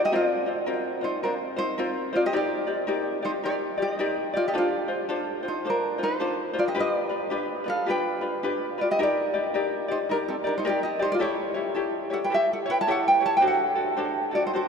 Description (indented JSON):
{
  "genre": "Hawaiian",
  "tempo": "108 BPM",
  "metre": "4/4",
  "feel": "swing 62% on 8ths",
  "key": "G minor",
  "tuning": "A4 = 444 Hz",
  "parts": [
    { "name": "tenor ukulele", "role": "melody", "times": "0.0-14.7 s", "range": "C4 to A5", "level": "-25 LUFS", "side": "equal", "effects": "none" },
    { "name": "ukulele", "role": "accompaniment", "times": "0.0-14.7 s", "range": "C4 to D5", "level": "-28 LUFS", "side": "left 2 dB", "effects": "none" }
  ],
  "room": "wet cathedral reverb, RT60 7.0 s",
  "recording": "recorded in a church or concert hall",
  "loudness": "-23 LUFS",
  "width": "side -6 dB against mid",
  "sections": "0.1-14.7 A section",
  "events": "none",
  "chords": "0.1 Gm7 (rootless); 2.3 Ebmaj7; 4.5 Dm7; 6.8 G7; 9.0 Ebmaj7; 11.2 A7; 13.4 D7",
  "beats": "| 0.11 0.67 1.22 1.77 | 2.33 2.88 3.44 3.99 | 4.55 5.10 5.66 6.21 | 6.76 7.32 7.87 8.43 | 8.98 9.54 10.09 10.65 | 11.20 11.76 12.31 12.87 | 13.42 13.98 14.53"
}